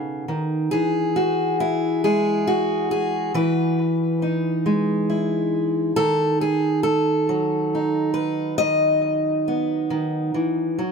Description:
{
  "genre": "folk, solo fingerstyle acoustic guitar",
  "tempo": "46 BPM (dotted quarters)",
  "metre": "6/8",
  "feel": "straight",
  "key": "E major",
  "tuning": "A4 = 440 Hz",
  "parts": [
    { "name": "fingerpicked steel-string acoustic guitar", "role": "solo", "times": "0.0-10.9 s", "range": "C#3 to D#5", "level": "-19 LUFS", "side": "equal", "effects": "tape echo" }
  ],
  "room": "light reverb",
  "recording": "none",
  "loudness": "-19 LUFS",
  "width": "side -5 dB against mid",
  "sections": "0.7-10.9 A section",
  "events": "none",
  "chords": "0.0 B7; 0.7 Emaj7; 6.0 B7/D#",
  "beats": "| 0.72 2.04 | 3.35 4.66 | 5.98 7.29 | 8.60 9.91"
}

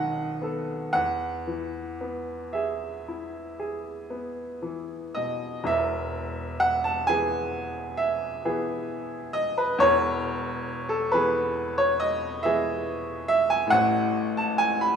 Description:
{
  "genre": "classical, romantic nocturne for solo piano",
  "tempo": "37-47 BPM (dotted quarters)",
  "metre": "9/8",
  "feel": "rubato",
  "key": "E major",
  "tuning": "A4 = 440 Hz",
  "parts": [
    { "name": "bright upright piano", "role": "solo", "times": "0.0-15.0 s", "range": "E1 to B5", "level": "-24 LUFS", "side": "right 1 dB", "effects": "none" }
  ],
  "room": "moderate recital hall reverb, RT60 1.4 s",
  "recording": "none",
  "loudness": "-24 LUFS",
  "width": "side -7 dB against mid",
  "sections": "0.0-5.7 A section; 5.7-15.0 A section",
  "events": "none",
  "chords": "0.0 B7; 0.9 E; 13.7 F#m/A",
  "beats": "| 0.95 2.55 4.11 | 5.68 7.09 8.44 | 9.81 11.12 12.43 | 13.72"
}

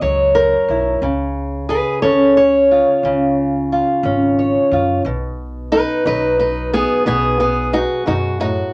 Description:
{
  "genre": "acoustic country blues, solo or duo",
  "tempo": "60 BPM (dotted quarters)",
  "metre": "12/8",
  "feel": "straight",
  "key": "unclear",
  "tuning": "A4 = 440 Hz",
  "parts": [
    { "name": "fingerpicked old ladder-braced acoustic guitar", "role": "melody", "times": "0.0-8.7 s", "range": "F#2 to C#5", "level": "-17 LUFS", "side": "equal", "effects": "none" },
    { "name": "upright bass", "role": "bass", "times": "0.0-8.6 s", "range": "G#1 to F#2", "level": "-28 LUFS", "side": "equal", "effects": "none" }
  ],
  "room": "light reverb",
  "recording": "none",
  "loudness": "-16 LUFS",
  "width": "mono",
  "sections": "0.0-8.7 A section",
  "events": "none",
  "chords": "0.0 F#7; 1.0 C#; 5.0 B",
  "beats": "0.01 | 1.02 2.03 3.03 4.04 | 5.04 6.05 7.06 8.06"
}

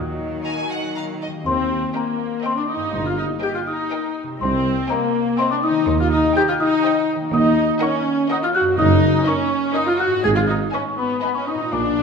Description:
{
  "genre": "cinematic",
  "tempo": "123 BPM",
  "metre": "3/4",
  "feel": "straight",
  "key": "Eb major, Eb minor from 7.3 s",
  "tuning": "A4 = 443 Hz",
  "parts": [
    { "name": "celesta", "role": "melody", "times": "0.0-12.0 s", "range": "Bb5 to Ab6", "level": "-25 LUFS", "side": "left 3 dB", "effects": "none" },
    { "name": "clear studio viola section", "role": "accompaniment", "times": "0.0-12.0 s", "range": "Gb3 to Ab4", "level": "-25 LUFS", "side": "right 2 dB", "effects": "none" },
    { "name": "mellow French horn section", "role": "sustained chords", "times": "0.0-12.0 s", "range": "Bb3 to Ab4", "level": "-21 LUFS", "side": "left 3 dB", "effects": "none" },
    { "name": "concert harp", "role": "arpeggios", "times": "0.0-12.0 s", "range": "Gb2 to Gb5", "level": "-32 LUFS", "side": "left 4 dB", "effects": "none" },
    { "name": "clear studio cello section", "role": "bass", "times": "0.0-12.0 s", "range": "C2 to Eb3", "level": "-28 LUFS", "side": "right 4 dB", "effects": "none" },
    { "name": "rich studio double bass section", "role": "bass", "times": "0.0-12.0 s", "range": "Gb1 to Eb2", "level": "-26 LUFS", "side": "right 5 dB", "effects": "none" },
    { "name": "rich studio violin section", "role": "second line", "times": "0.4-11.6 s", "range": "Bb4 to Ab5", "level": "-32 LUFS", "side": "left 1 dB", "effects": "none" },
    { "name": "rich studio violin section", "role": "melody", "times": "0.5-11.6 s", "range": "Eb5 to Bb5", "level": "-35 LUFS", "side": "left 2 dB", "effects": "none" },
    { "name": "dark tuba", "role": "bass", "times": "1.5-12.0 s", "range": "Gb1 to Eb2", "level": "-26 LUFS", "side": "right 4 dB", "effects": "none" }
  ],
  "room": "wet scoring stage reverb, RT60 1.5 s",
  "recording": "minimal, uncompressed stereo recording",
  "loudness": "-17 LUFS",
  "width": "side -5 dB against mid",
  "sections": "0.0-1.5 A section; 1.5-12.0 B section",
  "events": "none",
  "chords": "0.0 Ebm; 1.5 Eb; 2.9 Eb/G; 4.4 Cm; 5.9 Cm/Eb; 7.3 Ebm; 8.8 Ebm/Gb; 10.2 Abm",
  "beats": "0.45 0.96 | 1.46 1.95 2.44 | 2.93 3.42 3.92 | 4.41 4.89 5.38 | 5.87 6.36 6.85 | 7.33 7.82 8.30 | 8.79 9.27 9.76 | 10.24 10.74 11.23 | 11.73"
}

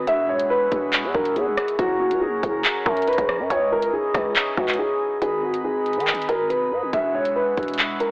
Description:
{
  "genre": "hip hop, drill",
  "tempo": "140 BPM",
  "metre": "4/4",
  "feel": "half-time",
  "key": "G# minor",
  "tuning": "A4 = 440 Hz",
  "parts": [
    { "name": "dark concert grand piano", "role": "melody", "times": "0.0-8.1 s", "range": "F#4 to E5", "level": "-22 LUFS", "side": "equal", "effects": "none" },
    { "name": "mellow accordion", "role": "sustained chords", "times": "0.0-8.1 s", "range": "E3 to B4", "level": "-29 LUFS", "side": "equal", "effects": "none" },
    { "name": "growling 808-style bass", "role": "bass", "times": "0.0-8.1 s", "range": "E1 to D#3", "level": "-27 LUFS", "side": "equal", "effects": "none" },
    { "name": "drill drum kit", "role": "drums", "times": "0.1-8.1 s", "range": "handclaps, hi-hat, kick drum, rim click", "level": "-24 LUFS", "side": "equal", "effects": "none" }
  ],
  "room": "light reverb, studio ambience",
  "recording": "blown-out, overdriven recording, overdrive, AM radio sound",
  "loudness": "-19 LUFS",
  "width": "side -27 dB against mid",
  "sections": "0.0-5.2 A section; 5.2-8.1 B section",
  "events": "break 4.8-5.2",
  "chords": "0.1 Eadd9; 1.8 F#; 3.5 C#madd9; 5.2 G#m; 6.9 Eadd9",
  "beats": "| 0.07 0.50 0.93 1.36 | 1.79 2.22 2.65 3.07 | 3.50 3.93 4.36 4.79 | 5.22 5.65 6.07 6.50 | 6.93 7.36 7.79"
}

